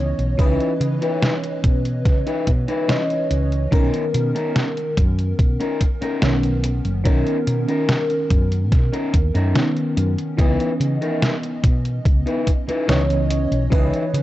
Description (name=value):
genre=vaporwave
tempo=72 BPM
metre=4/4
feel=straight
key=B major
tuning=A4 = 440 Hz
part: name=FM electric piano with soft pad layer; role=accompaniment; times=0.0-14.2 s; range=D#3 to D#5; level=-23 LUFS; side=equal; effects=phaser, wide subtle chorus, cassette tape, tape echo
part: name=woody fretless electric bass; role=bass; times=0.0-14.2 s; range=F#1 to C#3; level=-21 LUFS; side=equal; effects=tube saturation
part: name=detuned 8-bit digital drum machine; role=drums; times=0.2-14.2 s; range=hi-hat, snare drum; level=-24 LUFS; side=equal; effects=vintage 12-bit sampler grit
part: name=electric guitar at the edge of break-up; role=riff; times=0.4-14.0 s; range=C#4 to B4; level=-26 LUFS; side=left 2 dB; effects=wide subtle chorus, tape echo
part: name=electronic kick drum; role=drums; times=0.4-13.9 s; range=none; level=-18 LUFS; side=equal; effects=vintage 12-bit sampler grit
room=light reverb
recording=dry, gritty hardware recording, transformer saturation, cassette tape, nothing above 8.0 kHz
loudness=-17 LUFS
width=side -15 dB against mid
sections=0.0-14.2 A section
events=none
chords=0.0 C#m9; 3.7 Bmaj9; 10.4 C#m9